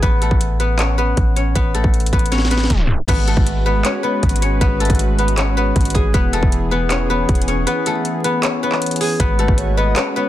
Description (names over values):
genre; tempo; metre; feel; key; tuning
hip hop, trap; 157 BPM; 4/4; half-time; G# phrygian; A4 = 440 Hz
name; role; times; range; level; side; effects
guzheng; melody; 0.0-10.3 s; A3 to G#5; -20 LUFS; left 2 dB; none
warm 808-style bass; bass; 0.0-9.9 s; E1 to A1; -19 LUFS; equal; none
trap drum kit; drums; 0.0-10.1 s; crash cymbal, handclaps, hi-hat, kick drum, snare drum; -18 LUFS; equal; vintage 12-bit sampler grit
warm analog pad; sustained chords; 3.1-10.3 s; E3 to B4; -24 LUFS; right 1 dB; chorus
breathy flute-like synth lead; second line; 9.4-10.0 s; B4 to D#5; -26 LUFS; left 4 dB; chorus, ping-pong delay
room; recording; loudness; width
digital ambience; dense, heavily limited modern master, vinyl crackle, tape stop; -14 LUFS; side -13 dB against mid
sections
0.0-3.1 A section; 3.1-10.3 B section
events
drum fill 2.3-3.1; tape stop 2.7-3.1; kick muted 7.7-9.2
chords
0.0 A; 3.1 G#m7; 6.1 E; 9.2 G#m7